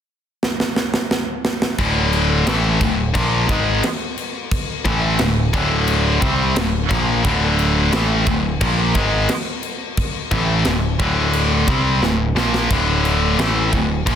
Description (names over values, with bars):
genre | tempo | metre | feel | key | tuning
heavy metal | 88 BPM | 4/4 | straight | D minor | A4 = 440 Hz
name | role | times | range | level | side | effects
tight metal drum kit | drums | 0.4-14.2 s | crash cymbal, kick drum, snare drum | -22 LUFS | equal | none
heavy high-gain guitar | riff | 1.8-14.2 s | D2 to C4 | -19 LUFS | left 7 dB | distortion
scooped high-gain guitar | riff | 1.8-14.2 s | D2 to C4 | -22 LUFS | right 13 dB | distortion
growling picked electric bass | bass | 1.8-14.2 s | D1 to C2 | -21 LUFS | equal | overdrive
room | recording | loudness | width
light reverb | dense, heavily limited modern master | -16 LUFS | side -9 dB against mid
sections
0.0-1.8 A section; 1.8-14.2 B section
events
drum fill 0.4-1.8, 12.0-12.7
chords
0.0 N.C.; 1.8 Dm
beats
0.42 1.10 | 1.79 2.47 3.15 3.83 | 4.51 5.20 5.88 6.56 | 7.24 7.93 8.61 9.29 | 9.97 10.65 11.34 12.02 | 12.70 13.38 14.06